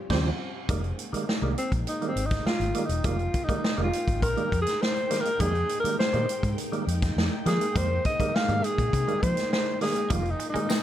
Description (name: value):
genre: funk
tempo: 102 BPM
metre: 4/4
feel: straight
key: F minor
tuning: A4 = 439 Hz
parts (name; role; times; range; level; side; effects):
- string machine, full ensemble; sustained chords; 0.0-10.8 s; G3 to G5; -35 LUFS; left 1 dB; ensemble chorus
- percussive tonewheel organ; stabs; 0.1-10.7 s; Db3 to C4; -32 LUFS; right 4 dB; chorus vibrato, fast rotary speaker, slapback echo, plate reverb
- vintage muted fingered electric bass; bass; 0.1-10.6 s; E1 to F3; -28 LUFS; left 1 dB; none
- vintage drum kit; drums; 0.1-10.8 s; crash cymbal, hi-hat, kick drum, snare drum; -29 LUFS; equal; none
- breathy alto saxophone; melody; 1.6-10.8 s; C4 to F5; -28 LUFS; left 1 dB; plate reverb
- electric guitar at the edge of break-up; riff; 10.1-10.7 s; F3 to Ab3; -35 LUFS; right 4 dB; spring reverb
- tambourine; percussion; 10.7-10.8 s; none; -35 LUFS; left 6 dB; none
room: light reverb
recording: none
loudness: -24 LUFS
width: side -11 dB against mid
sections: 0.7-10.8 A section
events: band accent 0.0-0.7; alto saxophone solo 0.7-10.8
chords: 0.0 Eb13; 0.7 Fm11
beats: 0.10 | 0.69 1.28 1.87 2.46 | 3.04 3.63 4.22 4.81 | 5.40 5.99 6.58 7.17 | 7.75 8.34 8.93 9.52 | 10.11 10.70